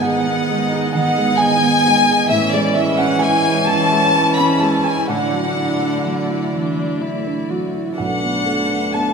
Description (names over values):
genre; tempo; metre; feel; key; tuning
neoclassical piano and strings; 41-44 BPM (dotted quarters); 6/8; rubato; unclear; A4 = 435 Hz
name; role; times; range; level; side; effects
warm chamber violin section; melody; 0.0-9.1 s; D5 to B5; -18 LUFS; left 3 dB; none
clear cello; second line; 0.0-9.1 s; D3 to A3; -25 LUFS; right 5 dB; none
dark viola; accompaniment; 0.0-9.1 s; B3 to F#4; -23 LUFS; right 2 dB; none
felt-muted upright piano; accompaniment; 0.0-9.1 s; B1 to B5; -20 LUFS; right 2 dB; none
dark chamber string section; sustained chords; 0.0-9.1 s; D3 to D#5; -27 LUFS; left 1 dB; none
room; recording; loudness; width
wet concert hall reverb, RT60 2.5 s; minimal, uncompressed stereo recording; -15 LUFS; side -5 dB against mid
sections
0.0-9.1 A section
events
none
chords
0.0 G#m7; 2.3 Amaj7; 5.1 Dadd9/A; 8.0 Bm7